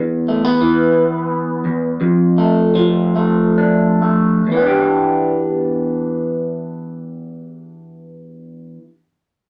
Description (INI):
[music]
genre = folk, solo fingerstyle acoustic guitar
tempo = 42-59 BPM (dotted quarters)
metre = 6/8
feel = rubato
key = E minor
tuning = A4 = 440 Hz
[part]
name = electric guitar through a small old amp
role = solo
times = 0.0-9.0 s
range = E2 to G4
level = -17 LUFS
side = equal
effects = phaser
[sound]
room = wet small room reverb, RT60 0.5 s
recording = none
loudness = -16 LUFS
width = mono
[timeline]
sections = 0.0-4.5 A section; 4.5-9.5 B section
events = slowing down 0.0-4.5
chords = 0.0 E5; 2.0 F6; 4.5 Em7